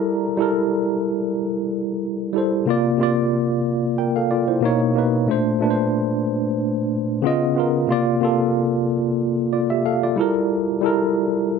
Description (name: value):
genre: R&B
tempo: 92 BPM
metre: 4/4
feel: swing 54% on 16ths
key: G dorian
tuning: A4 = 440 Hz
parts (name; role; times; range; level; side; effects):
- tine electric piano; solo; 0.0-11.6 s; Bb2 to Bb5; -18 LUFS; equal; medium stereo tremolo
room: wet studio ambience, RT60 0.5 s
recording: none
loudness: -18 LUFS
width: side -5 dB against mid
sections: 0.0-11.6 A section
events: none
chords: 0.0 Gm69; 2.7 C9sus4; 4.6 Bmaj9; 5.3 Bbmaj9; 7.2 C#9; 7.9 C9sus4; 10.2 Gm69